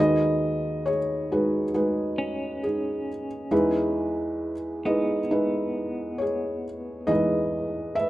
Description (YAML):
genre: acoustic folk-pop ballad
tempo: 68 BPM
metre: 4/4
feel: straight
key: E major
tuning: A4 = 439 Hz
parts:
  - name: felt-muted upright piano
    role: melody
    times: 0.0-8.1 s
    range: D#2 to E5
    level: -24 LUFS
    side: equal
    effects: none
  - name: clean electric guitar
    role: arpeggios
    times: 0.0-7.3 s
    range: B3 to B4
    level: -35 LUFS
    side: equal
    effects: tremolo
room: light reverb, small room ambience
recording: rough home demo mix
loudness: -24 LUFS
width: side -15 dB against mid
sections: 0.0-8.1 A section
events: none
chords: 0.0 G#m7/D#; 3.5 Emaj7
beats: 0.85 1.74 2.63 | 3.52 4.40 5.29 6.18 | 7.07 7.96